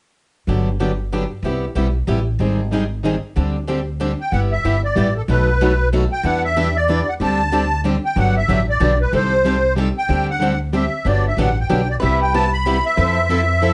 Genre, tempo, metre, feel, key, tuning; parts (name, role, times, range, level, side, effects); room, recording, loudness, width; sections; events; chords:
acoustic string swing (jazz manouche); 187 BPM; 3/4; swing 60% on 8ths; G major; A4 = 440 Hz
picked plugged-in steel-string acoustic guitar; accompaniment; 0.5-13.7 s; B2 to A4; -25 LUFS; equal
picked swing-style acoustic guitar; accompaniment; 0.5-13.7 s; B2 to B4; -28 LUFS; equal
upright bass; bass; 0.5-13.7 s; G1 to F2; -23 LUFS; equal
musette accordion; melody; 4.2-13.7 s; A4 to B5; -22 LUFS; equal
lap resonator guitar; second line; 12.0-13.7 s; B4 to C5; -27 LUFS; equal
moderate studio reverb, RT60 0.6 s; nothing above 10.7 kHz; -18 LUFS; mono
0.5-4.3 A section; 4.3-12.0 B section; 12.0-13.7 C section
0.5 Gmaj7; 1.4 Cmaj7; 2.4 Abmaj7; 3.4 D7sus4; 4.3 G6; 5.3 B7; 6.2 Em7; 7.2 D7sus4; 8.2 Gmaj7; 9.1 Cm6; 10.1 D7sus4; 11.0 Gmaj7; 12.0 Cmaj7; 13.0 Fmaj7